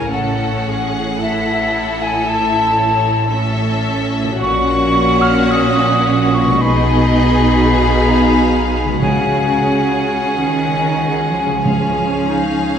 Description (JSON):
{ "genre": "classical, slow romantic movement for symphony orchestra", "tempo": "44-58 BPM", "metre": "4/4", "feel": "rubato", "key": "unclear", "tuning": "A4 = 442 Hz", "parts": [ { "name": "rich studio violin section", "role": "melody", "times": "0.0-12.8 s", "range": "C#5 to Gb5", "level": "-26 LUFS", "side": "left 3 dB", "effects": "none" }, { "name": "clear studio violin section", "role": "second line", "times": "0.0-12.8 s", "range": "F#4 to Bb4", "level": "-23 LUFS", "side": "left 3 dB", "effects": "none" }, { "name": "silver concert flute", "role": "second line", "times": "0.0-12.8 s", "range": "E5 to E#6", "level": "-18 LUFS", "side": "left 1 dB", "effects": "none" }, { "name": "rich studio viola section", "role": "accompaniment", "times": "0.0-12.8 s", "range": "Db4 to E4", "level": "-21 LUFS", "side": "right 2 dB", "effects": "none" }, { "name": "concert harp", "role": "arpeggios", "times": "0.0-12.8 s", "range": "A2 to D#5", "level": "-23 LUFS", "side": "left 4 dB", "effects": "none" }, { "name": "clear studio double bass section", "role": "bass", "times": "0.0-12.8 s", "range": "A1 to C#2", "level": "-21 LUFS", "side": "right 2 dB", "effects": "none" }, { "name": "rich studio cello section", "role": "bass", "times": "0.0-12.8 s", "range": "A2 to E#3", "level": "-20 LUFS", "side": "right 2 dB", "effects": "none" }, { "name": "timpani", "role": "percussion", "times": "9.0-12.8 s", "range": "C#3", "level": "-22 LUFS", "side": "right 2 dB", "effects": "none" }, { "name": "warm clarinet", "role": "second line", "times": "12.3-12.8 s", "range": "D#4", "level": "-20 LUFS", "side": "left 2 dB", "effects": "none" } ], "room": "wet scoring stage reverb, RT60 1.6 s", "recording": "heard from further back in the room", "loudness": "-13 LUFS", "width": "side -8 dB against mid", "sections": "0.0-12.8 A section", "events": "none", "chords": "0.1 A; 4.4 F#/A#; 6.6 G#m/B; 9.0 C#sus4; 11.6 C#", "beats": "| 0.12 1.21 2.26 3.31 | 4.40 5.48 6.61 7.77 | 9.01 10.36 11.65" }